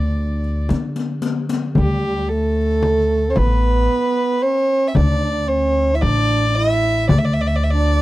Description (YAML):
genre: Arabic maqam ensemble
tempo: 113 BPM (eighths)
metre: 10/8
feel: straight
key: D maqam rast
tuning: A4 = 440 Hz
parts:
  - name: dark violin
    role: melody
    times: 0.0-8.0 s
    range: G4 to E5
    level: -20 LUFS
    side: equal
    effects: none
  - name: growling trombone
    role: second line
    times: 0.0-8.0 s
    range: G3 to E4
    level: -24 LUFS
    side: right 5 dB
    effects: none
  - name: upright bass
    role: bass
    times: 0.0-8.0 s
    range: A1 to D3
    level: -19 LUFS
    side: equal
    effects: none
  - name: riq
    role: percussion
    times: 0.4-1.7 s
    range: none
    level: -24 LUFS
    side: left 6 dB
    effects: none
  - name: frame drum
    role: percussion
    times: 0.7-7.3 s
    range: none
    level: -21 LUFS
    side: left 2 dB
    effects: none
room: small room reverb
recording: dry, close 1970s-style studio recording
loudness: -16 LUFS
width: side -16 dB against mid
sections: 0.0-1.8 A section; 1.8-8.0 B section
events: drum fill 0.7-1.8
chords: none